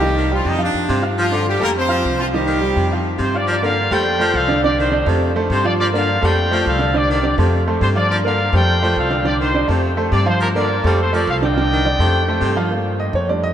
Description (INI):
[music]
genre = latin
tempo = 208 BPM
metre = 4/4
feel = straight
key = unclear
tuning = A4 = 440 Hz
[part]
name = clear horn section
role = melody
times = 0.0-3.2 s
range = F3 to Eb5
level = -22 LUFS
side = equal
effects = none
[part]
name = clear upright piano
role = accompaniment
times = 0.0-13.5 s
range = D3 to F6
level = -20 LUFS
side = right 2 dB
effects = none
[part]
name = upright bass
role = bass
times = 0.0-13.5 s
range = C2 to G2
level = -20 LUFS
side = equal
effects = none
[part]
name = clear baritone saxophone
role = second line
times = 0.2-12.6 s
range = C3 to G3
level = -23 LUFS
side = left 1 dB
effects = none
[part]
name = bright trumpet section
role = melody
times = 3.2-12.5 s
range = D4 to G5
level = -20 LUFS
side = left 1 dB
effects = none
[sound]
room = wet cathedral reverb, RT60 5.7 s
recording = in a vast, echoing space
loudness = -15 LUFS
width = side -10 dB against mid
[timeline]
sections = 0.0-3.5 A section; 3.5-12.7 B section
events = none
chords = 0.0 Cm; 0.6 F5; 1.2 Gm7; 1.8 F; 2.3 Cm; 2.9 F5; 3.5 Gm7; 4.1 F6; 5.2 F; 5.8 Gm7; 6.4 F6; 7.5 F; 8.1 Gm7; 8.7 F6; 9.8 F; 10.4 Gm7; 11.0 F6; 12.7 Gm7